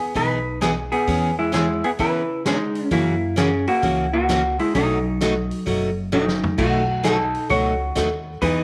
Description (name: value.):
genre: country, western swing.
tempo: 131 BPM.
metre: 4/4.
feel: swing 65% on 8ths.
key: unclear.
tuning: A4 = 442 Hz.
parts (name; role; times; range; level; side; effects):
vintage hollow-body jazz guitar; melody; 0.0-8.6 s; F#3 to C#5; -24 LUFS; equal; slapback echo.
vintage drum kit; drums; 0.0-8.6 s; crash cymbal, hi-hat, kick drum, snare drum, toms; -32 LUFS; equal; none.
picked steel-string acoustic guitar; accompaniment; 0.1-8.6 s; B2 to G#4; -26 LUFS; equal; none.
upright bass; bass; 0.2-8.6 s; F#1 to C#3; -31 LUFS; equal; none.
room: light reverb, small room reverb.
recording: none.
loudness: -21 LUFS.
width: mono.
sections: 0.0-8.6 A section.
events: drum fill 6.1-6.6.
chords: 0.0 Emaj7; 1.1 C#m7/E; 2.9 F#7; 4.8 B7.